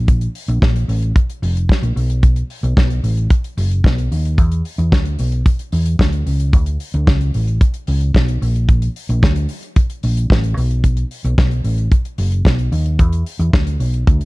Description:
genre	disco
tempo	112 BPM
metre	4/4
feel	straight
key	unclear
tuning	A4 = 439 Hz
part	hollow-body short-scale fingered electric bass	bass	0.0-14.2 s	F1 to E2	-16 LUFS	equal	none
part	damped 70s drum kit	drums	0.1-14.2 s	hi-hat, kick drum, snare drum	-15 LUFS	equal	none
room	little or no reverb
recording	dark, warm production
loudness	-14 LUFS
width	side -22 dB against mid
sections	0.0-14.2 A section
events	none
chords	none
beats	| 0.08 0.62 1.16 1.69 | 2.23 2.77 3.31 3.84 | 4.38 4.92 5.46 6.00 | 6.53 7.07 7.61 8.15 | 8.69 9.22 9.76 10.30 | 10.84 11.38 11.91 12.45 | 12.99 13.53 14.07

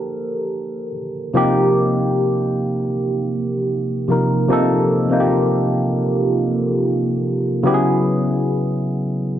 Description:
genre	R&B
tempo	free time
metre	none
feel	none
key	unclear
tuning	A4 = 439 Hz
part	tine electric piano	solo	0.0-9.4 s	C3 to Bb4	-16 LUFS	equal	overdrive, phaser
room	light reverb, digital ambience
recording	none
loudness	-16 LUFS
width	side -11 dB against mid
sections	0.0-1.3 A section; 1.3-9.4 B section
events	tine electric piano solo 0.0-1.3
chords	0.0 F7sus4; 1.3 Cm7; 7.7 Dbm7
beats	free time

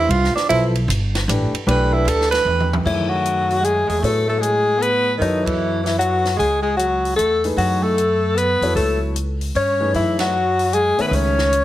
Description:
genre	modal jazz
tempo	152 BPM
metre	3/4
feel	swing 64% on 8ths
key	F# dorian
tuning	A4 = 440 Hz
part	warm tenor saxophone	second line	0.0-11.6 s	D#3 to B4	-23 LUFS	right 4 dB	none
part	dark baby grand piano	accompaniment	0.0-11.5 s	D#3 to E5	-25 LUFS	left 2 dB	none
part	upright bass	bass	0.0-11.6 s	G1 to A2	-22 LUFS	equal	none
part	compact cocktail drum kit	drums	0.1-11.6 s	crash cymbal, hi-hat, kick drum, ride cymbal, snare drum, toms	-28 LUFS	equal	none
part	warm alto saxophone	melody	2.9-11.6 s	D#4 to C#5	-18 LUFS	left 2 dB	plate reverb
room	moderate large studio reverb, RT60 0.8 s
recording	heavily compressed radio sound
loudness	-16 LUFS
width	side -14 dB against mid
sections	0.0-2.9 A section; 2.9-11.6 B section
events	tenor saxophone solo 0.0-2.9; drum fill 2.5-2.9; band accent 5.4, 10.1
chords	0.5 Asus2; 2.9 F#m11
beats	0.10 | 0.49 0.89 1.28 | 1.67 2.06 2.46 | 2.85 3.24 3.64 | 4.03 4.42 4.82 | 5.21 5.61 6.00 | 6.39 6.79 7.18 | 7.58 7.97 8.36 | 8.76 9.15 9.55 | 9.94 10.34 10.73 | 11.12 11.52

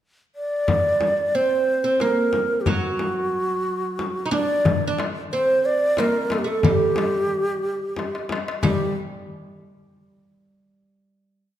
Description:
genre	Arabic maqam ensemble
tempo	90 BPM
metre	3/4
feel	straight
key	G maqam nahawand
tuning	A4 = 440 Hz
part	breathy low ney	melody	0.4-8.9 s	F#4 to D5	-22 LUFS	equal	none
part	frame drum	percussion	0.7-8.9 s	none	-27 LUFS	left 2 dB	none
part	oud	second line	1.3-8.9 s	F#3 to Eb4	-26 LUFS	right 3 dB	none
part	darbuka	percussion	4.7-8.9 s	none	-26 LUFS	left 3 dB	none
room	wet recital hall reverb, RT60 1.8 s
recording	none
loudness	-20 LUFS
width	side -11 dB against mid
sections	0.0-0.7 pickup bar; 0.7-8.6 A section; 8.6-10.6 final note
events	drum fill 8.0-8.6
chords	none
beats	0.02 | 0.68 1.34 2.01 | 2.67 3.33 3.99 | 4.66 5.32 5.98 | 6.64 7.30 7.97 | 8.63

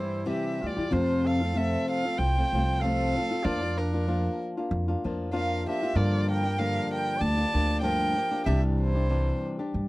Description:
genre	mexican folk, mariachi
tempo	95 BPM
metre	4/4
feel	swing 55% on 8ths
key	F major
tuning	A4 = 441 Hz
part	rich violin	melody	0.0-9.4 s	Bb4 to A5	-30 LUFS	right 1 dB	none
part	mellow trumpet	second line	0.0-9.4 s	D4 to D5	-37 LUFS	right 3 dB	none
part	flamenco guitar	accompaniment	0.0-9.9 s	F2 to G4	-29 LUFS	left 2 dB	none
part	upright bass	bass	0.0-9.9 s	C2 to G2	-28 LUFS	equal	none
room	little or no reverb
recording	dry, close 1970s-style studio recording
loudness	-24 LUFS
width	side -19 dB against mid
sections	0.9-9.9 A section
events	none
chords	0.0 C; 0.9 F; 3.4 Bb/F; 6.0 Gm7; 8.5 Cadd9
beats	0.27 | 0.91 1.54 2.18 2.82 | 3.45 4.08 4.71 5.34 | 5.96 6.59 7.21 7.83 | 8.46 9.10 9.73

